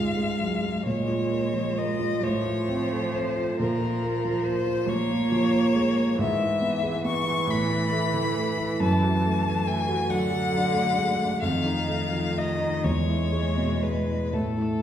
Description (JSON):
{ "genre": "classical, slow romantic movement for piano trio", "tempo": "40-47 BPM (dotted quarters)", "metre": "6/8", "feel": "rubato", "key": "unclear", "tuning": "A4 = 439 Hz", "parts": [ { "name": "clear violin", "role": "melody", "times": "0.0-14.8 s", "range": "A4 to C#6", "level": "-28 LUFS", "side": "left 5 dB", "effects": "none" }, { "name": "clear cello", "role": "second line", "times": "0.0-14.8 s", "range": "D3 to Bb3", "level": "-29 LUFS", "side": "right 3 dB", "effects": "none" }, { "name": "warm concert grand piano", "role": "accompaniment", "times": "0.0-14.8 s", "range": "Db2 to F#4", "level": "-26 LUFS", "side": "right 1 dB", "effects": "none" } ], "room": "wet recital hall reverb, RT60 1.3 s", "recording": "heard from further back in the room", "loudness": "-23 LUFS", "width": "side -10 dB against mid", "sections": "0.0-14.8 A section", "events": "none", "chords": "0.0 Db; 0.9 Bbm7; 2.2 F/A; 3.6 Bbm; 6.2 E/G#; 7.5 A5; 8.8 D/F#; 11.4 F7; 12.9 E", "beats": "| 0.85 2.23 | 3.59 4.89 | 6.20 7.49 | 8.82 10.11 | 11.42 12.86 | 14.33" }